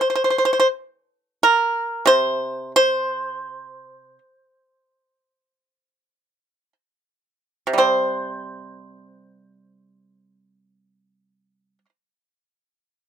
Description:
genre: chinese traditional, Chinese solo plucked strings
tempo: 55-92 BPM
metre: 4/4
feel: rubato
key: unclear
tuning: A4 = 440 Hz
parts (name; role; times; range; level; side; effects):
- pipa; solo; 0.0-11.9 s; C3 to C5; -17 LUFS; right 1 dB; none
room: little or no reverb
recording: close, detailed microphones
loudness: -17 LUFS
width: side -8 dB against mid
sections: 0.0-7.8 A section; 7.8-11.9 B section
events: slowing down 1.4-7.8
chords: none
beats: 0.12 0.77 | 1.43 2.09 2.76 3.46 | 4.20 4.98 5.84 6.76 | 7.80 8.86 9.88 10.90

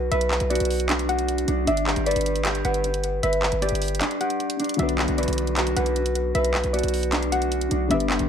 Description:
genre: hip hop, trap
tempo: 154 BPM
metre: 4/4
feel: half-time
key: B minor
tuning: A4 = 440 Hz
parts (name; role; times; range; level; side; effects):
- soft round pluck; second line; 0.0-8.3 s; D5 to F#5; -30 LUFS; left 4 dB; chorus, ping-pong delay
- mellow electric guitar; arpeggios; 0.0-8.3 s; D4 to B4; -25 LUFS; right 1 dB; low-pass filter, ping-pong delay
- hard-hitting 808-style bass; bass; 0.0-8.3 s; G1 to B1; -26 LUFS; equal; none
- trap drum kit; drums; 0.1-8.3 s; handclaps, hi-hat; -28 LUFS; right 1 dB; overdrive
- felt-muted upright piano; accompaniment; 4.8-8.3 s; D3 to B4; -30 LUFS; left 5 dB; low-pass filter
room: light reverb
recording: none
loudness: -21 LUFS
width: side -8 dB against mid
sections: 0.0-8.3 A section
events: break 4.0-4.8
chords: 0.0 Bm; 1.7 G; 4.8 Bm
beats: | 0.12 0.51 0.89 1.28 | 1.67 2.06 2.45 2.84 | 3.23 3.62 4.01 4.40 | 4.79 5.18 5.57 5.96 | 6.35 6.74 7.13 7.52 | 7.91

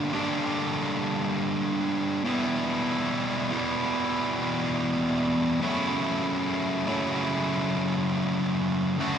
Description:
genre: rock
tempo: 71 BPM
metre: 4/4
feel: straight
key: unclear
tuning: A4 = 440 Hz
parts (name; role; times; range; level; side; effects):
- fuzz guitar; solo; 0.0-9.2 s; D2 to G4; -24 LUFS; equal; distortion
room: wet scoring stage reverb, RT60 1.9 s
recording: recorded in a church or concert hall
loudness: -24 LUFS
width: side -8 dB against mid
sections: 0.0-9.2 A section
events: none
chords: 0.0 Gm; 2.2 Em; 5.6 F#m7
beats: 0.56 1.40 | 2.24 3.09 3.93 4.77 | 5.62 6.46 7.30 8.15 | 8.99

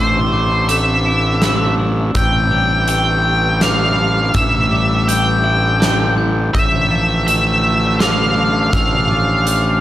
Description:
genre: post-rock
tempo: 82 BPM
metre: 3/4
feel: straight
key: unclear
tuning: A4 = 440 Hz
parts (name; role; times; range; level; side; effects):
- octave-fuzz lead guitar; melody; 0.0-9.8 s; C5 to G5; -17 LUFS; equal; distortion, analog delay
- clear studio string section; sustained chords; 0.0-9.8 s; C3 to D4; -26 LUFS; equal; none
- glockenspiel with hard plastic mallets; arpeggios; 0.0-9.8 s; D6 to G6; -24 LUFS; right 1 dB; analog delay
- twelve-string electric guitar; arpeggios; 0.0-9.8 s; A2 to B4; -24 LUFS; left 1 dB; phaser, analog delay
- fuzz fingered electric bass; bass; 0.0-9.8 s; A1; -18 LUFS; equal; overdrive
- big rock drum kit; drums; 0.7-9.6 s; hi-hat, kick drum, snare drum; -20 LUFS; equal; none
room: light reverb, small room ambience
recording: none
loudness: -13 LUFS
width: side -13 dB against mid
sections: 0.0-9.8 A section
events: none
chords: 0.0 Amadd9; 2.2 C/A; 6.5 Dmadd9/A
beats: 0.69 1.43 | 2.16 2.89 3.62 | 4.35 5.08 5.81 | 6.54 7.27 8.00 | 8.73 9.46

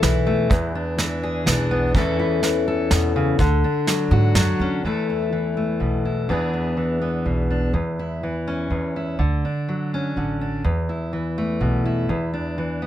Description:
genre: acoustic folk duo or small band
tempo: 124 BPM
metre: 3/4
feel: straight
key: E mixolydian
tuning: A4 = 439 Hz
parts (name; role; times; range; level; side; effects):
- fingerpicked steel-string acoustic guitar; accompaniment; 0.0-12.9 s; E2 to A4; -21 LUFS; left 1 dB; none
- upright bass; bass; 0.0-12.3 s; A1 to G#2; -22 LUFS; right 1 dB; none
- soft brush drum kit; drums; 0.0-4.5 s; hi-hat, kick drum, snare drum; -23 LUFS; right 1 dB; none
room: light reverb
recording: none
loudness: -19 LUFS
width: side -12 dB against mid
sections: 0.0-4.8 A section; 4.8-12.9 B section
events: none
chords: 0.0 Esus4; 0.5 E7; 1.9 Aadd9/E; 3.4 Dmaj7; 4.8 Esus4; 6.3 E7; 7.7 C#m/E; 9.2 Dmaj7; 10.6 Esus4; 12.1 E5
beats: 0.03 | 0.51 0.99 1.47 | 1.95 2.43 2.91 | 3.39 3.87 4.36 | 4.84 5.32 5.80 | 6.29 6.77 7.26 | 7.74 8.22 8.71 | 9.19 9.68 10.16 | 10.65 11.13 11.61 | 12.10 12.58

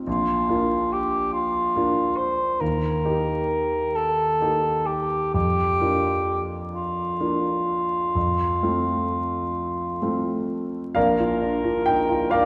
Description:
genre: classical, romantic duo for cor anglais and grand piano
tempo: 42-48 BPM (dotted quarters)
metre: 12/8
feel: rubato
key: Bb major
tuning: A4 = 440 Hz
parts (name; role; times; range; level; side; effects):
- clear concert grand piano; accompaniment; 0.0-12.5 s; Bb1 to G5; -27 LUFS; equal; none
- dark cor anglais; melody; 0.1-12.5 s; F4 to D5; -26 LUFS; equal; none
room: wet scoring stage reverb, RT60 2.0 s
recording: recorded in a church or concert hall, vinyl crackle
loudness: -24 LUFS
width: mono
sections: 0.0-11.0 A section; 11.0-12.5 A section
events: none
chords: 0.1 Bb; 2.6 Eb; 5.3 Bb/F; 8.2 F; 11.0 Bb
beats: | 0.07 1.34 2.61 3.96 | 5.35 6.74 8.16 9.56 | 10.96 12.31

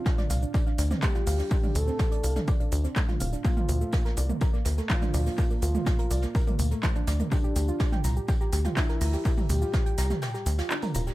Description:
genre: melodic techno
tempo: 124 BPM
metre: 4/4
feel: straight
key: D minor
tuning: A4 = 441 Hz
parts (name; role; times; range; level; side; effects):
- soft octave-layered synth lead; melody; 0.0-10.1 s; D4 to A4; -35 LUFS; left 1 dB; chorus, tape echo
- soft round pluck; arpeggios; 0.0-11.1 s; F3 to Bb5; -35 LUFS; right 1 dB; chorus, sidechain pumping, tape echo
- electronic kick drum; drums; 0.1-9.8 s; none; -26 LUFS; equal; none
- soft brush drum kit; drums; 0.1-11.1 s; hi-hat, snare drum, tambourine; -42 LUFS; right 1 dB; sidechain pumping on hats, high-pass filter on hats, high-pass filter on snare, sidechain pumping on perc, high-pass filter on perc, high-pass filter on room, tape echo
- techno drum kit; drums; 0.1-11.1 s; handclaps, hi-hat, shaker, toms; -33 LUFS; right 1 dB; sidechain pumping on perc, sidechain pumping on hats, sidechain pumping on toms, tape echo
- tight sequencer bass; bass; 0.3-11.1 s; D1 to D2; -26 LUFS; equal; sidechain pumping
room: digital ambience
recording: echo-heavy mix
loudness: -24 LUFS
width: side -17 dB against mid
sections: 0.0-11.1 A section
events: break 10.2-11.1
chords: 0.0 Dm7; 3.4 Bb; 7.3 Gm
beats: 0.06 0.54 1.03 | 1.51 2.00 2.48 2.96 | 3.45 3.93 4.41 4.90 | 5.38 5.87 6.35 6.83 | 7.32 7.80 8.29 8.77 | 9.25 9.74 10.22 10.70

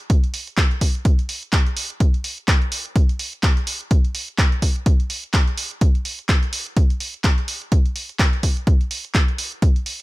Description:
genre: house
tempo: 126 BPM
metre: 4/4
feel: swing 58% on 16ths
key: none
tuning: none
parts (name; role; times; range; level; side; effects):
- punchy analog drum machine; drums; 0.0-10.0 s; handclaps, hi-hat; -24 LUFS; right 1 dB; none
- electronic kick drum; drums; 0.1-9.7 s; none; -17 LUFS; equal; none
room: little or no reverb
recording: none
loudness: -18 LUFS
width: side -20 dB against mid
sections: 0.0-10.0 A section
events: none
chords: none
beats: | 0.10 0.57 1.05 1.53 | 2.00 2.48 2.96 3.43 | 3.91 4.38 4.86 5.34 | 5.81 6.29 6.77 7.24 | 7.72 8.19 8.67 9.15 | 9.62

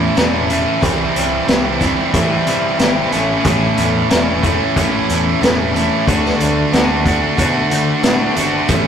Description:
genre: classic rock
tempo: 92 BPM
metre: 4/4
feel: straight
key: unclear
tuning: A4 = 443 Hz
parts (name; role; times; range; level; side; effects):
- picked steel-string acoustic guitar; accompaniment; 0.0-8.9 s; A2 to F#4; -24 LUFS; right 4 dB; none
- sludgy distorted guitar; riff; 0.0-8.9 s; A2 to F#4; -19 LUFS; left 5 dB; overdrive
- tight distorted guitar; riff; 0.0-8.9 s; A2 to F#4; -18 LUFS; right 6 dB; distortion
- growling picked electric bass; bass; 0.0-8.9 s; E1 to D3; -23 LUFS; equal; overdrive
- vintage drum kit; drums; 0.2-8.8 s; hi-hat, kick drum, snare drum; -18 LUFS; equal; none
room: moderate stone room reverb, RT60 1.0 s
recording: rough rehearsal-room recording, tube saturation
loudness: -13 LUFS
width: side -8 dB against mid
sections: 0.0-8.9 A section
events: none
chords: 0.0 A; 0.8 C; 3.1 A; 6.1 D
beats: 0.16 | 0.82 1.48 2.13 2.79 | 3.45 4.10 4.76 5.41 | 6.07 6.72 7.38 8.04 | 8.69

